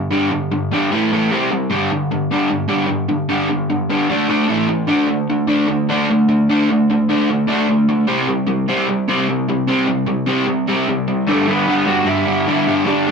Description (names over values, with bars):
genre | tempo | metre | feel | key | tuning
punk | 151 BPM | 4/4 | straight | G major | A4 = 440 Hz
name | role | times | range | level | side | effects
overdriven semi-hollow guitar | riff | 0.0-13.1 s | G2 to D4 | -15 LUFS | equal | none
lead guitar through a small cranked amp | melody | 11.3-13.1 s | A3 to F#5 | -20 LUFS | right 2 dB | overdrive
room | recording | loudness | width
wet small room reverb, RT60 0.5 s | rough rehearsal-room recording | -15 LUFS | side -5 dB against mid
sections
0.0-11.3 A section; 11.3-13.1 B section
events
none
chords
0.0 G5; 0.9 A5; 1.3 C5; 1.7 G5; 4.1 D5; 4.5 A5; 4.9 D5; 8.1 C5; 11.3 G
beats
| 0.12 0.52 0.92 1.31 | 1.71 2.11 2.50 2.90 | 3.30 3.70 4.09 4.49 | 4.89 5.29 5.69 6.08 | 6.48 6.88 7.28 7.68 | 8.08 8.48 8.88 9.28 | 9.68 10.07 10.47 10.87 | 11.27 11.67 12.07 12.46 | 12.86